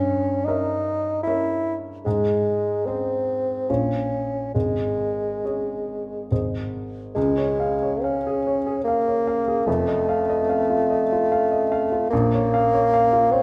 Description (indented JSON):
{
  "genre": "classical, romantic duo for bassoon and grand piano",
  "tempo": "66-76 BPM",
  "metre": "3/4",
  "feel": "rubato",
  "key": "Db major",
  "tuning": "A4 = 439 Hz",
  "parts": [
    { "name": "dark bassoon", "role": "melody", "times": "0.0-13.4 s", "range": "Ab3 to E4", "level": "-24 LUFS", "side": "equal", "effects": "none" },
    { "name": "dark baby grand piano", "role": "accompaniment", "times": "0.0-13.4 s", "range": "F1 to F5", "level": "-27 LUFS", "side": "equal", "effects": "none" }
  ],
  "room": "wet recital hall reverb, RT60 1.5 s",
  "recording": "none",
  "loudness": "-23 LUFS",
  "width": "mono",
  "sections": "0.0-7.2 A section; 7.2-13.4 B section",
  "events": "none",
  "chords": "0.0 Gdim7; 2.1 Ab; 3.7 Bbm; 4.5 Absus4; 6.3 Ab; 7.2 Db; 9.7 F7; 12.1 Bbm",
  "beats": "0.46 1.25 | 2.05 2.86 3.68 | 4.54 5.43 6.30 | 7.16 8.04 8.86 | 9.66 10.49 11.30 | 12.11 12.92"
}